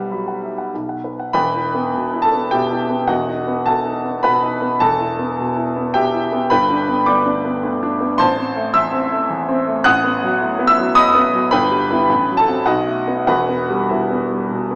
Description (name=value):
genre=classical, virtuoso piano study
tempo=105 BPM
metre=3/4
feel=uneven beats, rubato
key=E minor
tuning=A4 = 441 Hz
part: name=warm grand piano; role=solo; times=0.0-14.8 s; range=E1 to F#6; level=-18 LUFS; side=equal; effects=none
room=wet recital hall reverb, RT60 1.6 s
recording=small speaker sound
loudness=-18 LUFS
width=mono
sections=0.0-1.3 A section; 1.3-14.8 B section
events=none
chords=0.0 Bsus4; 0.7 B5; 1.3 Em; 3.1 B7/E; 4.8 Em; 6.5 G; 8.2 Am; 9.9 B7/A; 11.5 Em/G; 12.1 F#dim/A; 12.7 B7; 13.3 Em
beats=0.11 0.73 | 1.34 1.93 2.51 | 3.09 3.66 4.24 | 4.81 5.37 5.95 | 6.51 7.07 7.63 | 8.19 8.75 9.30 | 9.86 10.41 10.96 | 11.52 12.09 12.67 | 13.28 13.90 14.51